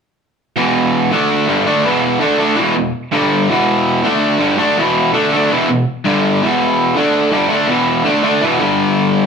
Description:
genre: rock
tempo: 165 BPM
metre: 4/4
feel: straight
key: unclear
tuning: A4 = 440 Hz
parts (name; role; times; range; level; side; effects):
- raw garage guitar; solo; 0.6-9.3 s; E2 to D4; -12 LUFS; equal; overdrive
room: moderate large studio reverb, RT60 0.9 s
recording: band playing live in one room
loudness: -12 LUFS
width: side -6 dB against mid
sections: 0.6-9.3 A section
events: none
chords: 0.6 E5; 1.1 D5; 1.5 E5; 3.1 G5; 3.5 E5; 4.0 D5; 4.4 E5; 6.0 G5; 6.4 E5; 7.0 D5; 7.3 E5; 8.6 G5

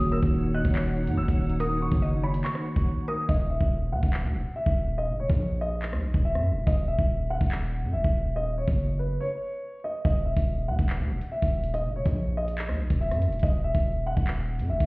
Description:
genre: hip hop, drill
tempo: 142 BPM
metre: 4/4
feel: half-time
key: Eb phrygian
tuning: A4 = 440 Hz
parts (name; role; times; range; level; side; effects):
- dark concert grand piano; melody; 0.0-14.9 s; Cb5 to Gb6; -32 LUFS; equal; tape echo
- mellow tine electric piano; accompaniment; 0.0-3.3 s; Eb3 to Gb4; -28 LUFS; equal; slow stereo tremolo
- hollow soft pad; sustained chords; 0.0-3.3 s; Eb4 to Gb5; -39 LUFS; left 1 dB; ensemble chorus
- distorted 808-style bass; bass; 0.0-14.9 s; Eb1 to Gb2; -27 LUFS; equal; distortion
- mallet-like synth pluck; second line; 0.1-3.3 s; Bb4 to Eb5; -38 LUFS; left 1 dB; chorus, tape echo
- drill drum kit; drums; 0.2-14.9 s; handclaps, hi-hat, kick drum, rim click; -26 LUFS; equal; none
room: digital ambience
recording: heard muffled through a wall, stone room reverb, vinyl crackle, EQ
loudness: -24 LUFS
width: side -25 dB against mid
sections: 0.0-3.3 A section; 3.3-14.9 B section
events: drums muted 2.9-3.3; hi-hats muted 3.3-10.1; break 9.2-10.1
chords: 0.0 Ebm7; 3.3 Ebm

